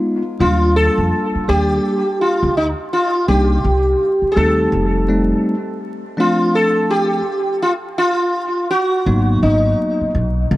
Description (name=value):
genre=hip hop, jazz-hop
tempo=83 BPM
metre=4/4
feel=swing 62% on 16ths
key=unclear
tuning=A4 = 438 Hz
part: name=bell-like tine electric piano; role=accompaniment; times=0.0-10.1 s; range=F3 to G4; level=-20 LUFS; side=left 1 dB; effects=dub echo
part: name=sitar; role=melody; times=0.4-10.6 s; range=Eb4 to A4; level=-17 LUFS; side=equal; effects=dub echo
part: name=upright bass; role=bass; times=0.4-10.6 s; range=F1 to F2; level=-17 LUFS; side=equal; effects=none
room=moderate spring reverb, RT60 1.9 s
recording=echo-heavy mix, vinyl crackle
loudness=-14 LUFS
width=side -16 dB against mid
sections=0.0-6.2 A section; 6.2-10.6 A section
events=none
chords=0.4 Ebmaj7; 3.3 Cm7; 4.7 F7; 6.2 F69; 9.1 Abm7